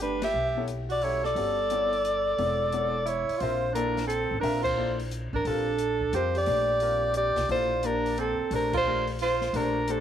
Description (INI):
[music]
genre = modal jazz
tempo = 176 BPM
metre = 3/4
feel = swing 65% on 8ths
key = Bb lydian from 3.4 s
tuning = A4 = 440 Hz
[part]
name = mellow soprano saxophone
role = melody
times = 0.0-10.0 s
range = A4 to E5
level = -27 LUFS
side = equal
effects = none
[part]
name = breathy alto saxophone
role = second line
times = 0.0-10.0 s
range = C4 to A4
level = -33 LUFS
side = right 9 dB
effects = none
[part]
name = warm concert grand piano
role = accompaniment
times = 0.0-10.0 s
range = G3 to E5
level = -35 LUFS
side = left 10 dB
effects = none
[part]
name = upright bass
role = bass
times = 0.0-10.0 s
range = E1 to F2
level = -34 LUFS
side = equal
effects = none
[part]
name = open jazz drum kit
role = drums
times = 0.0-10.0 s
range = crash cymbal, hi-hat, kick drum, ride cymbal, snare drum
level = -41 LUFS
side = left 4 dB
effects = none
[sound]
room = moderate plate reverb, RT60 1.7 s, small room reverb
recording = 1960s-style stereo with parts hard left and right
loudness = -24 LUFS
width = side -9 dB against mid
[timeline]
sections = 0.0-3.4 A section; 3.4-10.0 B section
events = band accent 0.2, 4.6, 8.7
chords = 0.0 Gmaj13; 1.4 Asus4/G; 3.4 Bbmaj9; 5.5 Gsus2/Bb; 7.5 Bbmaj9